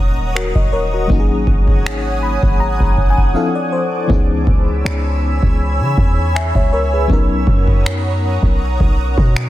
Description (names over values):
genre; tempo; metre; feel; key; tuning
contemporary R&B; 80 BPM; 4/4; swing 54% on 16ths; C# dorian; A4 = 441 Hz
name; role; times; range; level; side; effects
FM electric piano with tremolo; accompaniment; 0.0-9.5 s; E3 to B5; -21 LUFS; left 4 dB; none
granular cloud pad; sustained chords; 0.0-9.5 s; C#5 to E6; -22 LUFS; right 1 dB; built-in reverb, sidechain pumping
warm 808-style bass; bass; 0.0-9.5 s; D#1 to C#3; -18 LUFS; equal; none
booming analog drum machine; drums; 0.4-9.5 s; finger snaps, kick drum; -15 LUFS; equal; soft clipping on snare
room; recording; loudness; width
little or no reverb; dense, heavily limited modern master; -13 LUFS; side -15 dB against mid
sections
0.0-9.5 A section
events
FM electric piano fill 1.8-4.1; break 3.3-4.1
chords
0.0 D#m7; 1.1 G#7sus4; 3.3 Dm7; 4.1 C#m7; 7.1 Bmaj9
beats
0.35 | 1.10 1.85 2.60 3.35 | 4.10 4.85 5.60 6.35 | 7.10 7.85 8.60 9.35